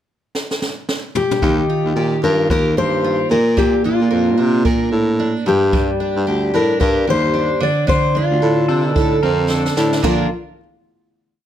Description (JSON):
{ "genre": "acoustic pop", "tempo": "112 BPM", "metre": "4/4", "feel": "swing 60% on 16ths", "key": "Bb major", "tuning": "A4 = 440 Hz", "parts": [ { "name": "jazz brush drum kit", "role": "drums", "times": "0.3-10.2 s", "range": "kick drum, snare drum, splash cymbal, toms", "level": "-21 LUFS", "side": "equal", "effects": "none" }, { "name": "fingerpicked steel-string acoustic guitar", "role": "melody", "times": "1.2-10.3 s", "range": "F4 to D5", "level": "-18 LUFS", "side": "left 4 dB", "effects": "plate reverb" }, { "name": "picked twelve-string acoustic guitar", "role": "accompaniment", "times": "1.4-10.3 s", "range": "G2 to Bb4", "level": "-19 LUFS", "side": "right 4 dB", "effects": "none" }, { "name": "breathy baritone saxophone", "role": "bass", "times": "1.4-10.3 s", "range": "D2 to C3", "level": "-19 LUFS", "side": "equal", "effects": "none" }, { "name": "pedal steel guitar", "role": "second line", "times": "8.7-10.3 s", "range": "D4 to Bb4", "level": "-25 LUFS", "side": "left 6 dB", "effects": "none" } ], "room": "light reverb", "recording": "none", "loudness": "-14 LUFS", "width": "side -10 dB against mid", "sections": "0.0-1.4 pickup bar; 1.4-10.0 verse; 10.0-11.5 final chord", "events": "drum fill 0.3-1.4, 9.5-10.0", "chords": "0.0 N.C.; 1.4 Ebadd9; 3.3 Bb; 5.5 Gm; 7.6 Dm7; 10.0 Bb", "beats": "0.35 0.89 | 1.42 1.96 2.50 3.04 | 3.58 4.12 4.66 5.19 | 5.73 6.27 6.81 7.34 | 7.88 8.42 8.96 9.50 | 10.03" }